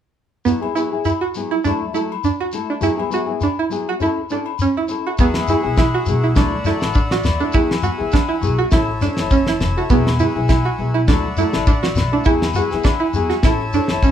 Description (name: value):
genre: highlife guitar band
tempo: 102 BPM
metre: 4/4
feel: swing 54% on 16ths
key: E mixolydian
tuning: A4 = 435 Hz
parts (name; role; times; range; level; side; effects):
- nylon-string guitar; accompaniment; 0.5-14.1 s; F#3 to A4; -23 LUFS; left 5 dB; none
- string-like resonator pluck; arpeggios; 0.5-14.1 s; B3 to F#4; -20 LUFS; right 6 dB; chorus
- shekere; percussion; 0.5-14.1 s; none; -25 LUFS; left 3 dB; none
- agogo bells; percussion; 0.6-14.0 s; none; -29 LUFS; left 11 dB; none
- accordion; sustained chords; 5.2-14.1 s; G#4 to A5; -28 LUFS; equal; none
- upright bass; bass; 5.2-14.1 s; E1 to E3; -23 LUFS; equal; none
- damped 70s drum kit; drums; 5.2-14.1 s; kick drum, snare drum; -18 LUFS; left 1 dB; none
room: light reverb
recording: band playing live in one room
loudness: -16 LUFS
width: side -10 dB against mid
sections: 0.5-5.2 A section; 5.2-14.1 B section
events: none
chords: 0.5 Eadd9; 1.6 Dadd9; 2.8 Eadd9; 4.0 A; 5.2 Eadd9; 6.4 Dadd9; 7.5 Eadd9; 8.7 A; 9.9 Eadd9; 11.1 Dadd9; 12.3 Eadd9; 13.4 A